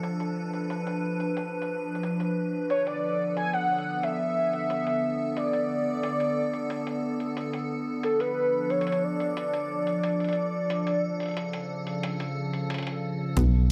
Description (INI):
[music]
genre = IDM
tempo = 90 BPM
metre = 4/4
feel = straight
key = unclear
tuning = A4 = 441 Hz
[part]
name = icy glass pad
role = sustained chords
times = 0.0-13.7 s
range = C#3 to B4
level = -32 LUFS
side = equal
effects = chorus, built-in reverb
[part]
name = electronic hi-hat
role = drums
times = 0.0-13.5 s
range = none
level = -44 LUFS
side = equal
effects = low-pass filter on hats, low-pass filter on room
[part]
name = warm velvety synth lead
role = melody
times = 2.7-12.7 s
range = A4 to G#5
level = -30 LUFS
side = equal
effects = chorus, delay
[part]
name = warbly dusty pluck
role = arpeggios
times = 13.4 s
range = B3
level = -33 LUFS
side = equal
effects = chorus
[part]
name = deep acid bass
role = bass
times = 13.4-13.7 s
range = B1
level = -22 LUFS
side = equal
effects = none
[part]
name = electronic kick drum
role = drums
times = 13.4-13.5 s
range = none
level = -33 LUFS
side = equal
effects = none
[sound]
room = moderate plate reverb, RT60 2.4 s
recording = none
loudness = -28 LUFS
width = mono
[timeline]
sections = 0.0-13.4 A section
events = none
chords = 0.0 Dm; 2.7 Bm7; 8.0 Dm